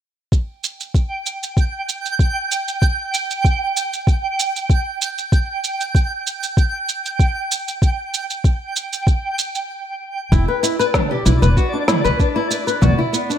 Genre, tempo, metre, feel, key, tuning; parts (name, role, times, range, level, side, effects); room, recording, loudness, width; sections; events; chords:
organic downtempo; 96 BPM; 4/4; swing 53% on 16ths; E minor; A4 = 438 Hz
electronic kick drum; drums; 0.3-13.0 s; -15 LUFS; equal
organic electronic drum kit; drums; 0.3-13.4 s; shaker, snare drum, toms; -22 LUFS; right 2 dB; gated reverb
twinkling granular texture; texture; 1.1-13.4 s; D5 to G5; -24 LUFS; right 3 dB; built-in reverb
flamenco guitar; arpeggios; 10.3-13.4 s; B3 to B4; -19 LUFS; left 2 dB; lush chorus, digital delay
upright bass; bass; 10.3-12.9 s; E1 to D2; -15 LUFS; equal; sidechain pumping
light reverb; bright 1980s-style digital production; -17 LUFS; side -10 dB against mid
0.3-10.3 A section; 10.3-13.4 B section
stop 9.7-10.3
0.3 N.C.; 10.3 E7(no3)